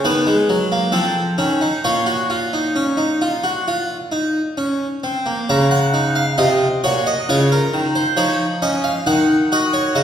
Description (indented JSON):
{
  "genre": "classical, baroque-style 3-part fugue for harpsichord",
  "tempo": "67 BPM",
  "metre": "4/4",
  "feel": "straight",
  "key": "Bb minor",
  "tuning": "A4 = 440 Hz",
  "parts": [
    { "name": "harpsichord", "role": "solo", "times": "0.0-10.0 s", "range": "Bb2 to Bb5", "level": "-15 LUFS", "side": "equal", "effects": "none" }
  ],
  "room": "wet recital hall reverb, RT60 1.4 s",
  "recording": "recorded in a church or concert hall",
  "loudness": "-16 LUFS",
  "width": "side -9 dB against mid",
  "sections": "0.0-5.5 A section; 5.5-10.0 B section",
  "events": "none",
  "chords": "0.1 B/D#; 0.9 F7; 1.9 Bbm; 7.3 Db; 9.1 Ebm"
}